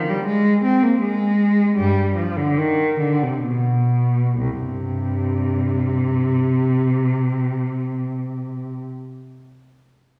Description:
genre	classical, baroque-style suite movement for unaccompanied cello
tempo	61-84 BPM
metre	3/4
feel	rubato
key	C minor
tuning	A4 = 436 Hz
part	warm cello	solo	0.0-8.8 s	C2 to C4	-20 LUFS	equal	none
room	wet recital hall reverb, RT60 1.5 s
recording	recorded in a church or concert hall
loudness	-20 LUFS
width	mono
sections	0.0-4.4 A section; 4.4-9.9 B section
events	slowing down 0.0-4.4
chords	none

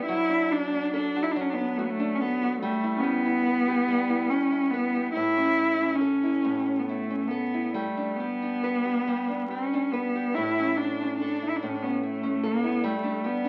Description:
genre	celtic folk, Celtic slow air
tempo	71 BPM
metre	3/4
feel	uneven beats, rubato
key	unclear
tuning	A4 = 439 Hz
part	clear cello	melody	0.0-13.5 s	A3 to E4	-28 LUFS	equal	none
part	nylon-string guitar	accompaniment	0.0-13.5 s	A2 to B4	-33 LUFS	equal	none
room	moderate large studio reverb, RT60 0.9 s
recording	very old 78 rpm record, vinyl crackle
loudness	-27 LUFS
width	mono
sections	0.0-13.5 A section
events	none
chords	0.1 D/F#; 2.6 Em/G; 5.2 A; 7.8 G; 12.9 Gsus2

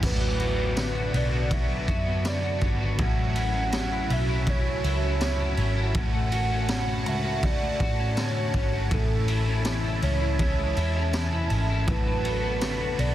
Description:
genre	dream pop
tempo	81 BPM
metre	4/4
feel	straight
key	unclear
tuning	A4 = 440 Hz
part	warbly nostalgic lead	melody	0.0-13.1 s	A4 to F#5	-32 LUFS	right 2 dB	chorus, tremolo, digital delay
part	cranked stack guitar	accompaniment	0.0-13.1 s	A2 to F#4	-35 LUFS	right 4 dB	overdrive, harmonic tremolo, analog chorus
part	phased analog pad	sustained chords	0.0-13.1 s	D4 to B5	-35 LUFS	right 2 dB	phaser, chorus
part	electric guitar at the edge of break-up	arpeggios	0.0-13.1 s	A2 to F#4	-31 LUFS	left 4 dB	ensemble chorus, digital delay
part	vintage muted picked electric bass	bass	0.0-13.1 s	G#1 to A2	-27 LUFS	equal	none
part	raw garage drum kit	drums	0.0-13.1 s	crash cymbal, kick drum, ride cymbal, snare drum, tambourine	-29 LUFS	equal	none
part	vibraphone with medium mallets	texture	0.0-13.1 s	A4 to B5	-44 LUFS	right 3 dB	none
room	light reverb, small room ambience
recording	dense, heavily limited modern master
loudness	-23 LUFS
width	side -13 dB against mid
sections	0.0-13.1 A section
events	none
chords	0.0 Bm7/A; 3.0 F#m7/A; 6.0 Dmaj7/A; 8.9 Amaj7; 11.9 Bm7/A

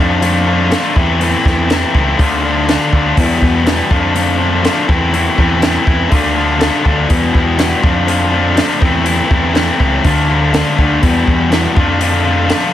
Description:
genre	indie rock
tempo	122 BPM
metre	4/4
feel	straight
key	D dorian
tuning	A4 = 443 Hz
part	thick fuzz guitar	riff	0.0-12.7 s	E2 to F4	-13 LUFS	left 2 dB	distortion
part	fuzz picked electric bass	bass	0.0-12.5 s	C#2 to F2	-17 LUFS	equal	overdrive
part	compact cocktail drum kit	drums	0.2-12.6 s	hi-hat, kick drum, snare drum	-15 LUFS	equal	none
room	light reverb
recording	none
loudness	-10 LUFS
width	side -12 dB against mid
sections	0.0-12.7 A section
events	none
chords	0.0 Dm/F; 1.0 Am/E; 2.2 Dm; 3.2 Em; 3.9 Dm/F; 4.9 Am/E; 6.1 Dm; 7.1 Em; 7.8 Dm/F; 8.8 Am/E; 10.0 Dm; 11.0 Em; 11.8 Dm/F

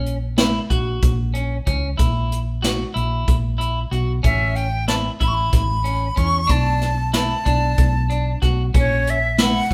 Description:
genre	progressive instrumental, band music in an uneven meter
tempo	187 BPM (eighths)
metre	7/8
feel	straight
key	unclear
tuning	A4 = 442 Hz
part	clean electric guitar	arpeggios	0.0-9.7 s	C#4 to F#4	-28 LUFS	equal	none
part	hollow-body short-scale fingered electric bass	bass	0.0-9.7 s	A1 to E2	-24 LUFS	equal	none
part	jazz brush drum kit	drums	0.1-9.7 s	hi-hat, kick drum, snare drum	-22 LUFS	equal	none
part	bright silver concert flute	melody	4.2-9.7 s	C#5 to C#6	-25 LUFS	equal	none
room	moderate stone room reverb, RT60 1.1 s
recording	band playing live in one room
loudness	-20 LUFS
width	mono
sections	0.0-9.7 A section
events	none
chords	0.0 F#/A#; 4.2 A; 6.5 Bm7; 8.7 F#/A#

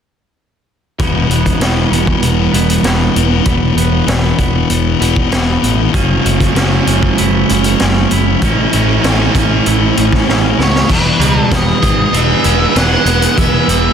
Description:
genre	rock, shoegaze and dream pop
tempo	97 BPM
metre	4/4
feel	straight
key	E major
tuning	A4 = 439 Hz
part	twangy electric guitar	arpeggios	1.0-13.9 s	B3 to G#4	-23 LUFS	right 14 dB	wide subtle chorus, analog delay
part	biting overdriven guitar	riff	1.0-13.9 s	A2 to F#4	-18 LUFS	right 13 dB	reverse reverb
part	thick fuzz guitar	riff	1.0-13.9 s	E2 to G#4	-16 LUFS	left 13 dB	distortion, wide subtle chorus
part	fuzz picked electric bass	bass	1.0-13.9 s	E1 to C#2	-16 LUFS	equal	overdrive
part	raw garage drum kit	drums	1.0-13.8 s	crash cymbal, hi-hat, kick drum, snare drum	-17 LUFS	equal	soft clipping on kick
part	octave-fuzz lead guitar	melody	10.6-13.9 s	B4 to F#5	-17 LUFS	equal	distortion, analog delay
part	glassy FM pad	sustained chords	11.4-13.9 s	B4 to D#6	-24 LUFS	right 4 dB	ensemble chorus, built-in reverb
room	studio reverb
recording	dense, heavily limited modern master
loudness	-10 LUFS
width	side -8 dB against mid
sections	1.0-10.9 A section; 10.9-13.9 B section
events	drum fill 10.3-10.9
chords	1.0 E; 5.9 F#m7; 8.4 A; 10.9 Emaj7

